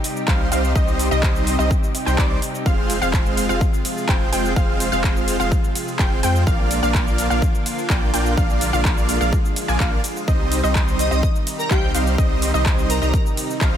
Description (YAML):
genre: EDM, festival progressive house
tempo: 126 BPM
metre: 4/4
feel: straight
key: C minor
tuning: A4 = 440 Hz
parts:
  - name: lush unison pad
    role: sustained chords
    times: 0.0-13.8 s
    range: C3 to G4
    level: -28 LUFS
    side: equal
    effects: chorus, sidechain pumping
  - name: big-room dance drum kit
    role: drums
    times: 0.0-13.7 s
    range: handclaps, hi-hat, ride cymbal, shaker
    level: -27 LUFS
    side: equal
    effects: overdrive
  - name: wide unison pluck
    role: arpeggios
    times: 0.3-13.8 s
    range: D5 to Ab5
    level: -28 LUFS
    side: equal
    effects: sidechain pumping, tape echo
  - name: big supersaw lead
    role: riff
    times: 0.3-13.8 s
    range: G3 to Ab5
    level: -24 LUFS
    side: right 1 dB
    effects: sidechain pumping, tape echo
  - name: saturated sub bass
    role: bass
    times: 0.3-13.8 s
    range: F1 to F2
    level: -23 LUFS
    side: equal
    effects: sidechain pumping
  - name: electronic kick drum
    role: drums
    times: 0.3-13.7 s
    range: none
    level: -19 LUFS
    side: equal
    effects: overdrive
  - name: airy dreamy lead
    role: melody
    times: 11.0-13.1 s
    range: G4 to Eb5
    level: -27 LUFS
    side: equal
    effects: chorus, tape echo
room: digital ambience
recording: none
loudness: -17 LUFS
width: side -9 dB against mid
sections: 0.0-13.8 A section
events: none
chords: 0.0 Cm; 2.7 Fm; 6.5 Bb; 10.3 Cm